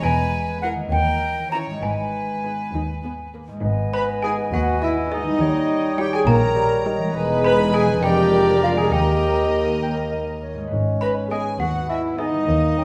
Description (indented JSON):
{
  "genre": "cinematic, playful, whimsical film cue",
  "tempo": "68 BPM (dotted quarters)",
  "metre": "6/8",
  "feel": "straight",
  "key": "G# minor",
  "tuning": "A4 = 440 Hz",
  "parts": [
    { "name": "trough xylophone with rubber mallets", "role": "melody", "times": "0.0-12.8 s", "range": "D#5 to B5", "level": "-31 LUFS", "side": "equal", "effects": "none" },
    { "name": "rich studio violin section", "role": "second line", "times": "0.0-12.8 s", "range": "A#4 to B5", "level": "-34 LUFS", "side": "equal", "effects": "none" },
    { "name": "silver concert flute", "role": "second line", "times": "0.0-12.8 s", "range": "F#5 to A#5", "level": "-31 LUFS", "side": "equal", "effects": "none" },
    { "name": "concert harp", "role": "arpeggios", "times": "0.0-12.8 s", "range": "G#2 to C#5", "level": "-33 LUFS", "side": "equal", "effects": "none" },
    { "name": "warm studio cello section", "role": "bass", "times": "0.0-12.8 s", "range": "D#2 to A#2", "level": "-29 LUFS", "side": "equal", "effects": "none" },
    { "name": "warm studio double bass section", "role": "bass", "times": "0.0-12.8 s", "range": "E1 to D#2", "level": "-30 LUFS", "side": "equal", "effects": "none" },
    { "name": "dark studio violin section", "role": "melody", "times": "0.6-12.4 s", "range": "G#4 to D#5", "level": "-35 LUFS", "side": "equal", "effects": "none" },
    { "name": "dark studio viola section", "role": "accompaniment", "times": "0.6-12.4 s", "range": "G3 to A#4", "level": "-30 LUFS", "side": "equal", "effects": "none" },
    { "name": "mellow clarinet", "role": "second line", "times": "3.6-12.8 s", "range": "B4 to G5", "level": "-33 LUFS", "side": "equal", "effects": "none" },
    { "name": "mellow bassoon", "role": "accompaniment", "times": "3.6-12.8 s", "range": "G3 to D#4", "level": "-31 LUFS", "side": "equal", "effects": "none" },
    { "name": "mellow cor anglais", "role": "second line", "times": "3.9-12.8 s", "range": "D#4 to B4", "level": "-32 LUFS", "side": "equal", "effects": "none" },
    { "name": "warm French horn section", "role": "sustained chords", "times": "3.9-12.8 s", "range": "D#4 to B4", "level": "-24 LUFS", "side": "equal", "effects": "none" }
  ],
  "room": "moderate scoring stage reverb, RT60 1.8 s",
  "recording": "none",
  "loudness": "-21 LUFS",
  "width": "mono",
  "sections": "0.0-3.6 A section; 3.6-12.8 B section",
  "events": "none",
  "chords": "0.0 E; 0.9 D#7b9; 1.8 G#m; 5.4 D#7; 7.1 E; 8.0 A#7/E#; 8.9 D#; 10.7 G#m"
}